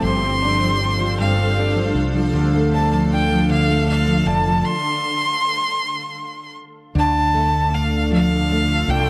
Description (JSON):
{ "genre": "six-eight pop ballad", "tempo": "52 BPM (dotted quarters)", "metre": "6/8", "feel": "straight", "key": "unclear", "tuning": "A4 = 443 Hz", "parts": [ { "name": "clear violin", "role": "melody", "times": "0.0-9.1 s", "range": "F5 to C6", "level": "-23 LUFS", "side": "equal", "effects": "none" }, { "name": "fingerpicked steel-string acoustic guitar", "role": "accompaniment", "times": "0.0-9.1 s", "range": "G2 to E4", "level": "-23 LUFS", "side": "equal", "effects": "double-tracked" }, { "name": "granular cloud pad", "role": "sustained chords", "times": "0.0-9.1 s", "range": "D3 to A5", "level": "-29 LUFS", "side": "equal", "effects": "built-in reverb" }, { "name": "mellow fretless electric bass", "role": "bass", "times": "0.0-9.1 s", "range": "F1 to D2", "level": "-24 LUFS", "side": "equal", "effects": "none" } ], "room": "light reverb, small room ambience", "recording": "none", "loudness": "-19 LUFS", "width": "mono", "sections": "0.0-6.9 A section; 6.9-9.1 B section", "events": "stop 4.6-6.9", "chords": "0.0 G7sus4; 2.3 Dm; 4.6 N.C.; 6.9 Dm", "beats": "| 0.03 1.18 | 2.33 3.49 | 4.64 5.79 | 6.95 8.11" }